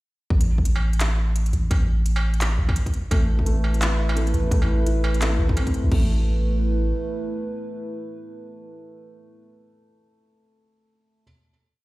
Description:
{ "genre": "half-time drum and bass", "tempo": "171 BPM", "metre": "4/4", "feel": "swing 58% on 16ths, half-time", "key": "unclear", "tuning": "A4 = 440 Hz", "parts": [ { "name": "long sustained 808-style bass", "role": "bass", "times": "0.3-6.9 s", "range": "A1 to B1", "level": "-21 LUFS", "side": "equal", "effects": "none" }, { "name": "electronic kick drum", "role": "drums", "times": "0.3-6.0 s", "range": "none", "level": "-22 LUFS", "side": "equal", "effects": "none" }, { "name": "industrial drum kit", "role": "drums", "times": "0.4-6.0 s", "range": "crash cymbal, handclaps, hi-hat, struck metal", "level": "-30 LUFS", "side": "right 1 dB", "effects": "none" }, { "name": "dark analog pad", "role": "sustained chords", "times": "3.1-9.5 s", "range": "A3 to B4", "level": "-30 LUFS", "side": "right 1 dB", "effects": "chorus, sidechain pumping" }, { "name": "felt-muted upright piano", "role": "arpeggios", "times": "3.1-6.1 s", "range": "A3 to E4", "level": "-32 LUFS", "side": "equal", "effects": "vintage 12-bit sampler grit, digital delay" } ], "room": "digital ambience", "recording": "played on a big sound system in a bare room, stone room reverb", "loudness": "-20 LUFS", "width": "side -19 dB against mid", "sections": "0.3-5.9 drop; 5.9-8.7 final chord", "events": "drop 0.3-5.9", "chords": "0.3 A5", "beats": "| 0.30 0.66 1.01 1.36 | 1.71 2.06 2.41 2.76 | 3.11 3.46 3.81 4.16 | 4.51 4.87 5.22 5.57 | 5.92 6.27 6.62 6.97 | 7.32 7.67 8.02 8.38" }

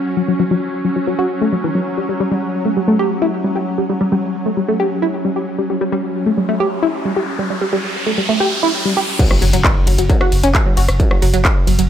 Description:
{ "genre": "driving peak-time techno", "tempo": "133 BPM", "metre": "4/4", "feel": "straight", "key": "F# phrygian", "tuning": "A4 = 440 Hz", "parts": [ { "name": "swarming drone", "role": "drone", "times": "0.0-9.2 s", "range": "F#3 to C#4", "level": "-22 LUFS", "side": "equal", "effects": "built-in reverb, sidechain pumping" }, { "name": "tight sequenced synth", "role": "riff", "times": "0.2-11.8 s", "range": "E3 to G4", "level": "-17 LUFS", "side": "equal", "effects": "chorus, tube saturation, sidechain pumping, dub echo" }, { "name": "riser and impact", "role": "sound effects", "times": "6.2-11.0 s", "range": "none", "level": "-23 LUFS", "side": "equal", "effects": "none" }, { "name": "electronic kick drum", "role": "drums", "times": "9.2-11.5 s", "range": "none", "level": "-14 LUFS", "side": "equal", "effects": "distortion" }, { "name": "techno drum kit", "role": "drums", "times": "9.2-11.9 s", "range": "crash cymbal, handclaps, hi-hat, ride cymbal, rim click", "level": "-20 LUFS", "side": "left 1 dB", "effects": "sidechain pumping on hats, low-pass filter on hats, sidechain pumping on cymbals, low-pass filter on cymbals, low-pass filter on snare" }, { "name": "saturated sub bass", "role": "bass", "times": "9.4-11.9 s", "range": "F#1", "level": "-16 LUFS", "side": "equal", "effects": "tube saturation, sidechain pumping, low-pass filter" } ], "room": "moderate plate reverb, RT60 2.1 s", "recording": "none", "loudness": "-14 LUFS", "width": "side -9 dB against mid", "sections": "0.0-9.2 A section; 9.2-11.9 B section", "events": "filter sweep on synth arpeggio sound 0.0-9.2; riser 6.2-9.2; drop 9.2-11.9; impact 9.2-11.0", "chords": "0.0 F#5", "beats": "| 0.17 0.62 1.07 1.52 | 1.98 2.43 2.88 3.33 | 3.78 4.23 4.68 5.13 | 5.58 6.04 6.49 6.94 | 7.39 7.84 8.29 8.74 | 9.19 9.64 10.10 10.55 | 11.00 11.45" }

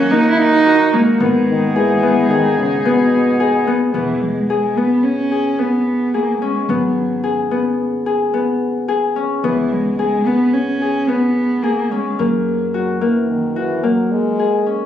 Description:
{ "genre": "contemporary instrumental, chamber music in an uneven meter", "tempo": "109 BPM", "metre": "5/4", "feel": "straight", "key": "G# minor", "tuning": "A4 = 440 Hz", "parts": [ { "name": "dark cello", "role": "melody", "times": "0.0-12.7 s", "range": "E3 to E4", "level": "-18 LUFS", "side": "right 2 dB", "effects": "none" }, { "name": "warm woodwind section", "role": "sustained chords", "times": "0.0-3.9 s", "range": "A#3 to G#4", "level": "-23 LUFS", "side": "equal", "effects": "none" }, { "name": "Celtic harp", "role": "arpeggios", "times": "0.0-14.9 s", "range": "A#3 to G#4", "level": "-17 LUFS", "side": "left 3 dB", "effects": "none" }, { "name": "upright bass", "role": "bass", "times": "0.0-14.9 s", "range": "E1 to F#2", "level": "-32 LUFS", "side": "right 2 dB", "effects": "none" }, { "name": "mellow French horn", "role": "second line", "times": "1.5-3.9, 12.7-14.8 s", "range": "B2 to G#3", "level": "-20 LUFS", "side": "equal", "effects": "none" } ], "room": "moderate recital hall reverb, RT60 1.5 s", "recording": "recorded on a phone in the room, club reverb, compression", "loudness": "-14 LUFS", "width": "side -10 dB against mid", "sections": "0.0-3.9 A section; 3.9-14.9 B section", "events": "none", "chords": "0.0 D#m; 1.2 G#m; 3.9 E; 6.7 G#m; 9.4 C#5; 12.2 F#add9", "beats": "0.11 0.65 | 1.20 1.75 2.30 2.85 3.39 | 3.94 4.49 5.04 5.59 6.14 | 6.69 7.24 7.79 8.34 8.89 | 9.44 9.99 10.54 11.09 11.63 | 12.19 12.73 13.28 13.83 14.38" }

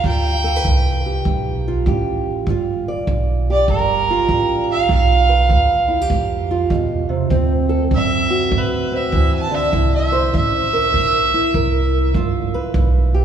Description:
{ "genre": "acoustic country blues, solo or duo", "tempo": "99 BPM", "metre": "4/4", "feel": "swing 66% on 8ths", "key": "G mixolydian", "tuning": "A4 = 441 Hz", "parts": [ { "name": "warm fiddle", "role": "melody", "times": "0.0-12.1 s", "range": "Bb4 to A5", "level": "-19 LUFS", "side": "right 3 dB", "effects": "none" }, { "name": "fingerpicked acoustic archtop guitar", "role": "accompaniment", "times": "0.0-13.2 s", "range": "G2 to D5", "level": "-21 LUFS", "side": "right 2 dB", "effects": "none" }, { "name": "upright bass", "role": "bass", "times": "0.0-13.2 s", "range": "G1 to A2", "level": "-19 LUFS", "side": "right 1 dB", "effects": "none" }, { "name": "kick drum", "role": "drums", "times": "0.0-12.9 s", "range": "none", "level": "-26 LUFS", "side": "right 2 dB", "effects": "none" } ], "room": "wet cathedral reverb, RT60 3.9 s", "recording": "recorded in a church or concert hall", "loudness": "-15 LUFS", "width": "side -8 dB against mid", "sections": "0.0-13.2 A section", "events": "fiddle solo 0.0-13.2", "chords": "0.0 G7; 7.3 D7; 9.7 C7; 12.2 G7", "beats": "| 0.05 0.65 1.26 1.87 | 2.48 3.08 3.69 4.30 | 4.90 5.51 6.11 6.72 | 7.33 7.93 8.53 9.14 | 9.74 10.35 10.95 11.55 | 12.15 12.75" }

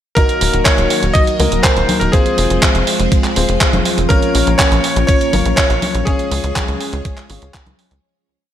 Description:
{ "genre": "italo disco", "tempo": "122 BPM", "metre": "4/4", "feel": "straight", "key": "unclear", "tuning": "A4 = 440 Hz", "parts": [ { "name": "bright electric grand piano", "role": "melody", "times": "0.2-7.5 s", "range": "Ab4 to Eb5", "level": "-19 LUFS", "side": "right 1 dB", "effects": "ping-pong delay" }, { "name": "string machine, full ensemble", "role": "sustained chords", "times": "0.2-8.0 s", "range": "Eb3 to Db5", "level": "-21 LUFS", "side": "equal", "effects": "phaser, ensemble chorus" }, { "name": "warm grand piano", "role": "stabs", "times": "0.2-7.5 s", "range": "Bb3 to Db5", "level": "-21 LUFS", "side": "left 4 dB", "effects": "vintage 12-bit sampler grit" }, { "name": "clean 12-bit digital drum machine", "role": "drums", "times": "0.2-8.0 s", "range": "congas, handclaps, hi-hat", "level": "-18 LUFS", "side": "right 1 dB", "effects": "gated reverb" }, { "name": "electronic kick drum", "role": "drums", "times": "0.2-7.6 s", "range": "none", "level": "-15 LUFS", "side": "equal", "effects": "none" }, { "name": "tight sequencer bass", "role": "bass", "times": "0.4-8.0 s", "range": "Eb1 to Db2", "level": "-17 LUFS", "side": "equal", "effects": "tube saturation" } ], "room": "digital ambience", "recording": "none", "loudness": "-12 LUFS", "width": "side -10 dB against mid", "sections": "0.2-8.0 chorus", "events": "fade-out 5.4-8.0", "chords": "0.2 Ebm; 2.1 Fm; 4.1 Bbm; 6.1 Db", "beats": "| 0.17 0.66 1.15 1.64 | 2.13 2.63 3.12 3.61 | 4.10 4.59 5.09 5.58 | 6.07 6.56 7.05 7.54" }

